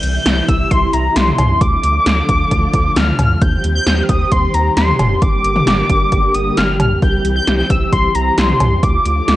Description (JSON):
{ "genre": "synth-pop", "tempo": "133 BPM", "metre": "4/4", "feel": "straight", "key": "unclear", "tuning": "A4 = 438 Hz", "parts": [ { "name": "octave-doubled lead", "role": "melody", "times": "0.0-9.4 s", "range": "Bb5 to G6", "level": "-17 LUFS", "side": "left 1 dB", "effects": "chorus, phaser, slapback echo" }, { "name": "soft string machine", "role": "sustained chords", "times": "0.0-9.4 s", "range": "C3 to G4", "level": "-21 LUFS", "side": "equal", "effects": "ensemble chorus" }, { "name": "round analog bass", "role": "bass", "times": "0.0-9.4 s", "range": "F1 to Eb2", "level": "-18 LUFS", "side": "equal", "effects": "none" }, { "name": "80s electronic pad drums", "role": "drums", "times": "0.0-9.4 s", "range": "cowbell, hi-hat, kick drum, snare drum, toms", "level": "-15 LUFS", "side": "equal", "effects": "gated reverb on snare and toms" } ], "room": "light reverb", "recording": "worn, warbling old tape, cassette tape, warbly pitch drift, nothing above 10.4 kHz", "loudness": "-12 LUFS", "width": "side -15 dB against mid", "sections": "0.0-9.4 A section", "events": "none", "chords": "0.0 C; 1.6 Dm; 3.4 Cm/Eb; 5.2 Gm; 7.0 C; 8.8 Dm" }